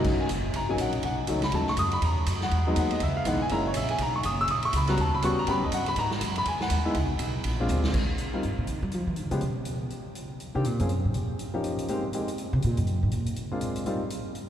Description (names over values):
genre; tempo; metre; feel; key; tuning
jazz, small-group swing and bop; 243 BPM; 4/4; swing 59% on 8ths; B major, Eb major from 7.9 s; A4 = 440 Hz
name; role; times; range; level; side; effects
clear grand piano; accompaniment; 0.0-14.0 s; Cb3 to E6; -28 LUFS; left 1 dB; none
upright bass; bass; 0.0-13.3 s; F#1 to G3; -28 LUFS; equal; none
swinging big-band drum kit; drums; 0.0-14.4 s; crash cymbal, hi-hat, kick drum, ride cymbal, snare drum; -34 LUFS; right 1 dB; none
room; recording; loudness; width
wet cathedral reverb, RT60 4.4 s; recorded in a church or concert hall; -25 LUFS; side -10 dB against mid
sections
0.0-7.9 A section; 7.9-14.5 A section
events
drum fill 7.7; upright bass solo 7.9-14.5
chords
0.0 Bmaj7; 1.0 B7; 2.0 Emaj9; 3.0 C#m7; 3.5 F#7; 4.0 Bsus2; 5.0 D#7alt; 6.0 G#m7; 6.9 C#5; 7.4 A#7; 7.9 Eb; 8.9 Ddim; 9.4 N.C.; 9.9 C7(no3); 10.9 Gbadd9; 11.4 Eb7; 11.9 Abmaj7; 12.9 Bb7; 13.9 Eb6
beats
| 0.05 0.29 0.54 0.79 | 1.03 1.28 1.53 1.77 | 2.02 2.27 2.51 2.76 | 3.01 3.25 3.50 3.75 | 3.99 4.24 4.49 4.73 | 4.98 5.22 5.47 5.72 | 5.96 6.21 6.46 6.70 | 6.95 7.20 7.44 7.69 | 7.94 8.18 8.43 8.68 | 8.92 9.17 9.42 9.66 | 9.91 10.16 10.40 10.65 | 10.90 11.15 11.39 11.64 | 11.89 12.13 12.38 12.63 | 12.88 13.12 13.37 13.62 | 13.86 14.11 14.36